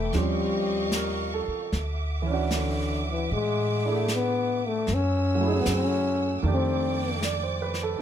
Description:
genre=jazz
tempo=76 BPM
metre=4/4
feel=swing 68% on 8ths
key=unclear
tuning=A4 = 440 Hz
part: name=growling trombone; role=melody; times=0.0-7.2 s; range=D3 to D#4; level=-27 LUFS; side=left 4 dB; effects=plate reverb
part: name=warm baby grand piano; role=accompaniment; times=0.0-8.0 s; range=C#3 to D5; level=-30 LUFS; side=right 6 dB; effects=none
part: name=warm studio string section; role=sustained chords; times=0.0-8.0 s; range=A3 to E6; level=-34 LUFS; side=right 1 dB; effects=none
part: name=upright bass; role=bass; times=0.0-8.0 s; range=D2 to A2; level=-29 LUFS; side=equal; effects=none
part: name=jazz brush drum kit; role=drums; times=0.1-8.0 s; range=brushed snare drum, hi-hat, snare drum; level=-34 LUFS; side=left 1 dB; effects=none
room=light reverb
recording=none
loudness=-24 LUFS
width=side -9 dB against mid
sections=0.0-8.0 A section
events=none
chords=0.1 D#13; 1.7 Dmaj9; 4.9 F#m9; 6.4 F13

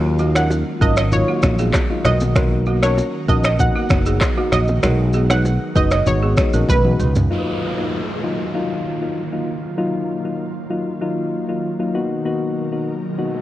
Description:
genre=afrobeats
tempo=97 BPM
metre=4/4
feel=straight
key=Eb minor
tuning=A4 = 438 Hz
part: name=soft electric-piano-like synth keys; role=accompaniment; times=0.0-13.4 s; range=Gb3 to F#4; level=-23 LUFS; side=left 3 dB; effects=chorus
part: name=ethereal airy pad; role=sustained chords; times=0.1-13.4 s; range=B2 to A#4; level=-28 LUFS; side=equal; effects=ensemble chorus, built-in reverb
part: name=fretless electric bass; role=bass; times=0.0-7.3 s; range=F#1 to Eb2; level=-18 LUFS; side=equal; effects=none
part: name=balafon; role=riff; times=0.2-7.1 s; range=Bb3 to B4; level=-25 LUFS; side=right 3 dB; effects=digital delay
part: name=afro-pop drum kit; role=drums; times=0.2-7.3 s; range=finger snaps, handclaps, kick drum, rim click, shaker, toms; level=-19 LUFS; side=equal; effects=overdrive
part: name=bongos and congas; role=percussion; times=0.2-7.3 s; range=none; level=-26 LUFS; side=right 1 dB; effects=none
part: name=analog pluck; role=melody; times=0.4-7.1 s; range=B4 to Gb5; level=-24 LUFS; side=right 2 dB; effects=chorus, digital delay
part: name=downlifter and riser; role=sound effects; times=7.3-13.4 s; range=none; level=-30 LUFS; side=equal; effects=none
room=light reverb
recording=worn, warbling old tape, cassette tape, warbly pitch drift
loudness=-16 LUFS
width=side -14 dB against mid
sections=0.0-7.3 A section; 7.3-13.4 B section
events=drum fill 6.7-7.3; riser 12.9-13.4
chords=0.0 Ebmadd9; 2.0 Bmaj7; 7.3 Ebmadd9; 11.9 Bmaj7

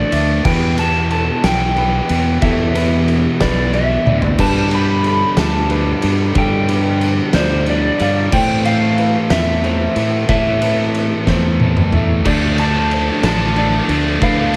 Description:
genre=post-rock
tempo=61 BPM (dotted quarters)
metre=6/8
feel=straight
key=A minor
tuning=A4 = 440 Hz
part: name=electric guitar through a small old amp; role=melody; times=0.0-14.6 s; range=C5 to B5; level=-23 LUFS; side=equal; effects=lush chorus, slapback echo
part: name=chorused pulse-width pad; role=sustained chords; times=0.0-14.6 s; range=B2 to A4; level=-31 LUFS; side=equal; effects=none
part: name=felt-muted upright piano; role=arpeggios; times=0.0-14.5 s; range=A4 to F5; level=-30 LUFS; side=equal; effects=slapback echo
part: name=distorted electric guitar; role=riff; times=0.0-14.5 s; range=E2 to D4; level=-22 LUFS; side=equal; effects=distortion
part: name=modern bright fingered electric bass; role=bass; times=0.1-14.6 s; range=A1 to A2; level=-20 LUFS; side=equal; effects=none
part: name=oversized low-tuned drum kit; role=drums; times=0.1-14.6 s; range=crash cymbal, kick drum, ride cymbal, snare drum, toms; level=-22 LUFS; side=equal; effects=none
part: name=tight distorted guitar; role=riff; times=12.2-14.6 s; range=D3 to D4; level=-23 LUFS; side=equal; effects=distortion
room=light reverb, small room reverb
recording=none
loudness=-16 LUFS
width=mono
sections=0.0-14.6 A section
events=drum fill 4.1-4.4, 11.3-12.3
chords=0.5 Em; 4.4 G7; 8.3 Am; 12.3 Dm

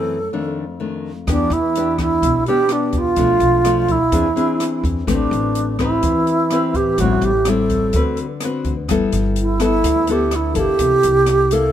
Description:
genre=bossa nova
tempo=126 BPM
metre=4/4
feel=straight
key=A minor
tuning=A4 = 438 Hz
part: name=alto flute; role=melody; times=0.0-11.7 s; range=D4 to A4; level=-17 LUFS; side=right 2 dB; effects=none
part: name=nylon-string guitar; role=accompaniment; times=0.0-11.7 s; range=F2 to B4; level=-21 LUFS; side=left 4 dB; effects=none
part: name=upright bass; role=bass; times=1.3-11.7 s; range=G1 to E2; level=-22 LUFS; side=equal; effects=none
part: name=open jazz drum kit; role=drums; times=1.3-11.6 s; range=hi-hat, kick drum, rim click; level=-26 LUFS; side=equal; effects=none
room=light reverb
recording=minimal, uncompressed stereo recording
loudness=-15 LUFS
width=side -10 dB against mid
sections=0.0-8.9 A section; 8.9-11.7 B section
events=none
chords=0.3 F6; 1.3 Em7; 3.2 Bm7b5; 4.1 Eaug7; 5.1 Am9; 7.0 Am7; 7.9 D6; 8.9 G69; 10.8 C6

